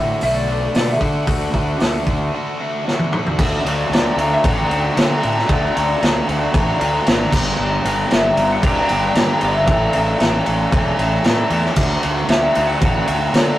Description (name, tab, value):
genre	garage rock duo or trio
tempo	115 BPM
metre	4/4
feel	straight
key	unclear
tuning	A4 = 440 Hz
part	clean lap steel guitar	melody	0.0-13.6 s	D5 to G5	-23 LUFS	left 1 dB	none
part	crunchy overdriven guitar	riff	0.0-13.6 s	G2 to A4	-22 LUFS	equal	none
part	fuzz fingered electric bass	bass	0.0-13.5 s	E1 to D3	-23 LUFS	equal	overdrive
part	vintage drum kit	drums	0.2-13.5 s	crash cymbal, hi-hat, kick drum, ride cymbal, snare drum, toms	-17 LUFS	equal	none
room	moderate studio reverb, RT60 0.6 s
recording	rough rehearsal-room recording, warm saturation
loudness	-15 LUFS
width	side -14 dB against mid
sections	0.0-3.4 A section; 3.4-13.6 B section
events	break 2.3-3.4; drum fill 2.9-3.4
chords	0.0 D; 7.3 G; 9.7 A; 11.8 D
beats	0.21 0.74 | 1.27 1.80 2.33 2.86 | 3.39 3.91 4.44 4.97 | 5.49 6.01 6.54 7.06 | 7.59 8.11 8.63 9.15 | 9.68 10.20 10.72 11.24 | 11.77 12.29 12.81 13.34